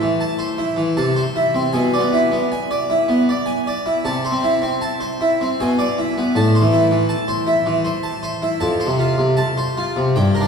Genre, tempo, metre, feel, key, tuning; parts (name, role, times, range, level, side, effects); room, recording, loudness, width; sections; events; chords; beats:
classical, baroque-style suite movement for harpsichord; 78 BPM; 3/4; rubato; A minor; A4 = 440 Hz
harpsichord; solo; 0.0-10.5 s; F2 to A5; -16 LUFS; equal
wet cathedral reverb, RT60 4.7 s; heard from further back in the room; -16 LUFS; side -6 dB against mid
0.0-10.5 A section
0.0 Am; 1.0 Am/C; 1.8 E7/B; 4.1 Am/C; 5.6 E7/B; 6.4 Am; 8.6 F
0.20 0.99 | 1.76 2.54 3.31 | 4.07 4.82 5.59 | 6.35 7.11 7.86 | 8.62 9.38 10.15